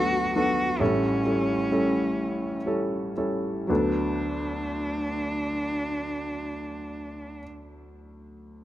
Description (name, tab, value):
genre	acoustic folk-pop ballad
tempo	38-46 BPM (dotted quarters)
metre	6/8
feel	straight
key	D major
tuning	A4 = 440 Hz
part	warm cello	melody	0.0-7.4 s	C#4 to F#4	-28 LUFS	right 1 dB	none
part	warm upright piano	accompaniment	0.0-8.6 s	A1 to A4	-27 LUFS	equal	none
room	light reverb, studio reverb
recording	rough home demo mix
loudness	-24 LUFS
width	side -13 dB against mid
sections	0.0-3.7 A section; 3.7-6.9 B section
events	slowing down 0.0-3.7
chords	0.0 D6; 0.8 A7; 3.7 D6